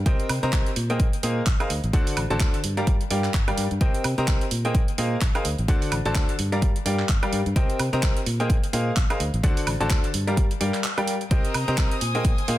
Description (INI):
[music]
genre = piano house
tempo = 128 BPM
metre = 4/4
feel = swing 58% on 16ths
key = C minor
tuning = A4 = 441 Hz
[part]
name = fingered electric bass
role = bass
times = 0.0-12.6 s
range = G1 to C3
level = -27 LUFS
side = equal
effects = sidechain pumping
[part]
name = bright grand piano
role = riff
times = 0.1-12.6 s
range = D3 to Bb5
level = -26 LUFS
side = left 1 dB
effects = sidechain pumping, ping-pong delay
[part]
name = electronic kick drum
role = drums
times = 0.1-12.4 s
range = none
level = -22 LUFS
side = equal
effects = none
[part]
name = house drum kit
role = drums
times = 0.1-12.6 s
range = handclaps, hi-hat, woodblock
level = -30 LUFS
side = right 3 dB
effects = none
[part]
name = warm studio violin section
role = sustained chords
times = 11.3-12.6 s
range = C5 to Eb6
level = -31 LUFS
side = left 3 dB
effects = sidechain pumping
[sound]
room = little or no reverb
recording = dense, heavily limited modern master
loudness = -21 LUFS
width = side -14 dB against mid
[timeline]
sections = 0.0-12.6 A section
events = break 10.8-11.3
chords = 0.1 Cm7; 0.8 Bb9sus4; 1.7 D7; 2.6 Gm7; 3.8 Cm7; 4.5 Bb9sus4; 5.5 D7; 6.4 Gm7; 7.6 Cm7; 8.3 Bb9sus4; 9.2 D7; 10.1 Gm7; 11.3 Cm7; 12.0 Bb9sus4